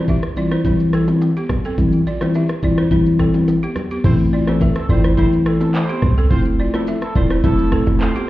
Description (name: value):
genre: afrobeats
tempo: 106 BPM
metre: 4/4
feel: straight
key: C major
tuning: A4 = 440 Hz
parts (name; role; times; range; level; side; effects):
- mellow tine electric piano; accompaniment; 0.0-8.1 s; E3 to E4; -17 LUFS; left 2 dB; phaser
- balafon; riff; 0.0-8.2 s; B3 to E5; -25 LUFS; right 2 dB; tape echo
- afro-pop drum kit; drums; 0.1-8.3 s; crash cymbal, handclaps, kick drum, rim click, shaker; -22 LUFS; equal; none
- bongos and congas; percussion; 0.1-8.1 s; none; -28 LUFS; right 3 dB; none
- warm horn section; second line; 4.0-8.3 s; E3 to C5; -27 LUFS; right 2 dB; none
- clean 808-style bass; bass; 4.0-8.1 s; E1 to C2; -17 LUFS; equal; none
room: light reverb, small room ambience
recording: heard muffled through a wall, club reverb, EQ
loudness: -14 LUFS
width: side -16 dB against mid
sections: 0.0-4.0 A section; 4.0-8.3 B section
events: none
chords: 0.0 C; 4.0 Am; 6.3 Fmaj7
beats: 0.08 0.65 1.21 | 1.78 2.35 2.91 3.48 | 4.04 4.61 5.18 5.74 | 6.31 6.87 7.44 8.01